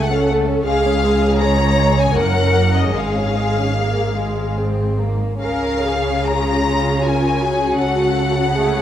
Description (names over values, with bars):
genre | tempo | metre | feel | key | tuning
classical, slow romantic movement for string orchestra | 68-82 BPM | 3/4 | rubato | Db major | A4 = 440 Hz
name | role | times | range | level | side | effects
clear studio violin section | melody | 0.0-8.8 s | Eb5 to Bb5 | -22 LUFS | left 4 dB | none
warm studio violin section | second line | 0.0-8.8 s | Ab3 to Bb4 | -23 LUFS | left 2 dB | none
warm studio viola section | accompaniment | 0.0-8.8 s | F4 to Db5 | -21 LUFS | equal | none
clear studio double bass section | bass | 0.0-8.8 s | Gb1 to Db2 | -22 LUFS | right 2 dB | none
rich studio cello section | bass | 0.0-8.8 s | Db2 to Db3 | -22 LUFS | right 1 dB | none
room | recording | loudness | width
moderate scoring stage reverb, RT60 2.1 s | none | -15 LUFS | side -10 dB against mid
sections
0.0-8.8 A section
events
none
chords
0.0 Gbm/Db; 0.7 Db; 2.2 Gb; 3.0 Db/Ab; 5.4 Db; 7.8 Gbm/Db